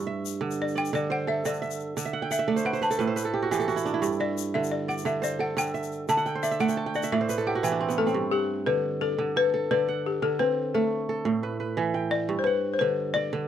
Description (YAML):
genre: west african traditional, West African string and xylophone music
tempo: 116 BPM (dotted quarters)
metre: 12/8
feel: straight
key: G major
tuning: A4 = 445 Hz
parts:
  - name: kora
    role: arpeggios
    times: 0.0-13.5 s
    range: G2 to A5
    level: -27 LUFS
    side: right 4 dB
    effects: none
  - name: egg shaker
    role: percussion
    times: 0.0-8.1 s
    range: none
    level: -40 LUFS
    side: left 15 dB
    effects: none
  - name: balafon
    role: melody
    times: 0.6-13.5 s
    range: G4 to A5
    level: -27 LUFS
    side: left 4 dB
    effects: none
room: small room ambience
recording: dry, close 1970s-style studio recording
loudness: -24 LUFS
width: side -10 dB against mid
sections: 0.0-8.2 A section; 8.2-13.5 B section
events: balafon solo 0.0-8.2; kora fill 2.0-4.0, 6.1-8.2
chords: 0.0 G5; 2.0 D5; 3.0 A5; 4.0 G5; 6.1 D; 7.1 A5; 8.2 G; 10.2 D; 11.3 A5; 12.3 G